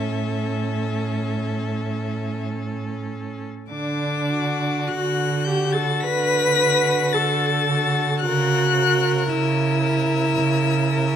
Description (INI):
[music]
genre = classical, slow romantic movement for string quartet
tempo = 46-57 BPM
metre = 4/4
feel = rubato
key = D major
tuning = A4 = 438 Hz
[part]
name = rich violin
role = melody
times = 0.0-11.2 s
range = E5 to B6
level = -25 LUFS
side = left 12 dB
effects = none
[part]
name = rich violin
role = second line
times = 0.0-11.2 s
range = F#4 to A#4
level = -29 LUFS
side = left 3 dB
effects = none
[part]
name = rich viola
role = accompaniment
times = 0.0-11.2 s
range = C#4 to B4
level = -24 LUFS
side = right 1 dB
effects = none
[part]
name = rich cello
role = bass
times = 0.0-11.2 s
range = A2 to D3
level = -24 LUFS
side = right 4 dB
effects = none
[sound]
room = light reverb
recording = close, detailed microphones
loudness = -19 LUFS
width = side -9 dB against mid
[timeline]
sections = 0.0-3.7 A section; 3.7-11.2 B section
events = none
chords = 0.0 A; 3.7 D; 8.2 F#7/C#